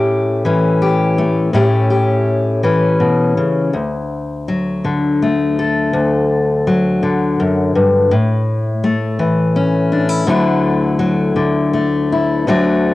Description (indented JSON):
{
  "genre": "folk, solo fingerstyle acoustic guitar",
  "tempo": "82 BPM",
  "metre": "3/4",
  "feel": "straight",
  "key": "D major",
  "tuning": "A4 = 440 Hz",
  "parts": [
    { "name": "fingerpicked steel-string acoustic guitar", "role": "solo", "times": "0.0-12.9 s", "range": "D2 to A4", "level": "-13 LUFS", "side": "left 2 dB", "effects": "cassette tape" }
  ],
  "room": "moderate spring reverb, RT60 1.5 s, small room ambience",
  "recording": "home recording on cassette",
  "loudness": "-13 LUFS",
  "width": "side -17 dB against mid",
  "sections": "0.0-3.7 A section; 3.7-12.5 B section",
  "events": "none",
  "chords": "0.0 A7; 3.7 D; 8.1 A; 10.3 Dadd9"
}